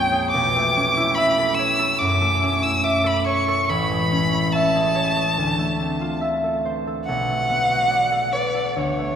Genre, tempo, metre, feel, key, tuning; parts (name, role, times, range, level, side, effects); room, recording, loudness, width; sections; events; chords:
classical, impressionist duo for violin and harp; 71 BPM; 4/4; rubato; A4 = 441 Hz
rich violin; melody; 0.0-9.2 s; C#5 to E6; -21 LUFS; equal
concert harp; accompaniment; 0.0-9.2 s; A1 to E5; -21 LUFS; equal
wet cathedral reverb, RT60 4.9 s; recorded in a church or concert hall; -18 LUFS; side -8 dB against mid
0.0-9.2 A section
0.3 Bm11; 3.7 Amaj9; 5.4 Dm9; 7.1 Bm7